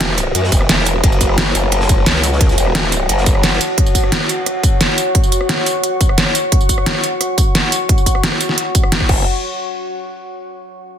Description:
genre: dark technical drum and bass.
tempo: 175 BPM.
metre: 4/4.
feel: straight.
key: F# minor.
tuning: A4 = 440 Hz.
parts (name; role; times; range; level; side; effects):
deep dark ambient pad; sustained chords; 0.0-9.3 s; F#4 to C#6; -20 LUFS; left 1 dB; chorus, built-in reverb, sidechain pumping.
growl bass; bass; 0.0-3.6, 9.1-9.3 s; E1 to F#2; -17 LUFS; equal; chorus, sidechain pumping.
dubstep drum kit; drums; 0.0-9.2 s; crash cymbal, hi-hat, rim click, snare drum, tambourine; -17 LUFS; right 1 dB; none.
raw garage drum kit; drums; 0.0-3.7 s; ride cymbal, snare drum; -27 LUFS; left 2 dB; high-pass filter on cymbals, high-pass filter on snare, high-pass filter on room.
electronic kick drum; drums; 0.5-9.2 s; none; -14 LUFS; equal; none.
room: light reverb.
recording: dense, heavily limited modern master.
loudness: -12 LUFS.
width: side -9 dB against mid.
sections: 0.0-9.3 A section; 9.3-10.6 B section.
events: none.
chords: 0.0 F#m; 9.3 N.C..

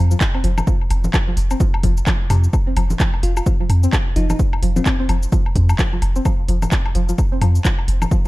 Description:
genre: minimal techno.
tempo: 129 BPM.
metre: 4/4.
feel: swing 59% on 16ths.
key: unclear.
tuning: A4 = 440 Hz.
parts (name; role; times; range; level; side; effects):
string-like resonator pluck; riff; 0.0-8.3 s; C3 to C4; -27 LUFS; equal; chorus, sidechain pumping, dub echo.
punchy sub bass; bass; 0.0-8.1 s; F1 to F2; -16 LUFS; equal; sidechain pumping.
minimal click drum kit; drums; 0.1-8.3 s; handclaps, hi-hat, shaker; -26 LUFS; right 1 dB; studio reverb.
electronic kick drum; drums; 0.2-8.2 s; none; -18 LUFS; equal; studio reverb.
woodblock and congas; percussion; 0.3-8.1 s; none; -28 LUFS; left 2 dB; overdrive, studio reverb, ping-pong delay.
bell-like FM electric piano; melody; 3.2-4.9 s; C4 to F4; -26 LUFS; left 2 dB; chorus, ping-pong delay.
room: digital ambience.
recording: dark, warm production.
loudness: -15 LUFS.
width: side -19 dB against mid.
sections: 0.0-8.3 A section.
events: none.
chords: 0.0 F5.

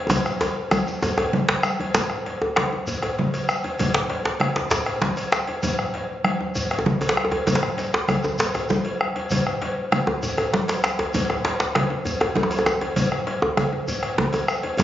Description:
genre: west african traditional, West African drum ensemble.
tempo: 131 BPM (dotted quarters).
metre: 12/8.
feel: straight.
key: none.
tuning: none.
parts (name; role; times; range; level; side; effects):
bombo; percussion; 0.1-14.8 s; none; -27 LUFS; left 1 dB; none.
congas; percussion; 0.1-14.8 s; none; -26 LUFS; right 1 dB; none.
cowbell; percussion; 0.1-14.8 s; none; -28 LUFS; left 2 dB; none.
djembe; percussion; 0.1-14.8 s; none; -35 LUFS; left 3 dB; none.
djembe; percussion; 0.1-14.8 s; none; -24 LUFS; equal; none.
shekere; percussion; 0.1-14.8 s; none; -34 LUFS; equal; none.
room: wet recital hall reverb, RT60 1.4 s.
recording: recorded on a phone in the room, club reverb, compression, nothing above 7.5 kHz.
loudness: -20 LUFS.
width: side -12 dB against mid.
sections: 0.0-1.9 A section; 1.9-14.8 B section.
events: drum fill 0.1-1.9.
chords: none.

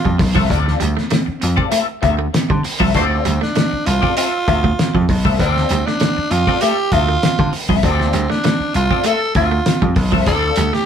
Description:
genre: funk.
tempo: 98 BPM.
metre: 4/4.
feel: straight.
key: D minor.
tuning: A4 = 444 Hz.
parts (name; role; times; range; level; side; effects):
growling tenor saxophone; melody; 0.0-10.9 s; C4 to A4; -20 LUFS; right 2 dB; none.
clean electric guitar; riff; 0.0-10.8 s; F3 to C4; -24 LUFS; right 5 dB; none.
electric guitar at the edge of break-up; accompaniment; 0.1-10.8 s; C4 to E5; -21 LUFS; left 9 dB; wah.
vintage slap bass; bass; 0.1-10.7 s; B1 to D3; -18 LUFS; equal; none.
cloth-damped thuddy drum kit; drums; 0.1-10.8 s; hi-hat, kick drum, snare drum; -19 LUFS; equal; none.
warm horn section; second line; 2.9-3.0 s; A3 to C5; -22 LUFS; left 1 dB; none.
room: light reverb.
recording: band playing live in one room.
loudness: -14 LUFS.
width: side -8 dB against mid.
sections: 0.0-10.9 A section.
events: band accent 2.9-5.4.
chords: 0.0 Dm7.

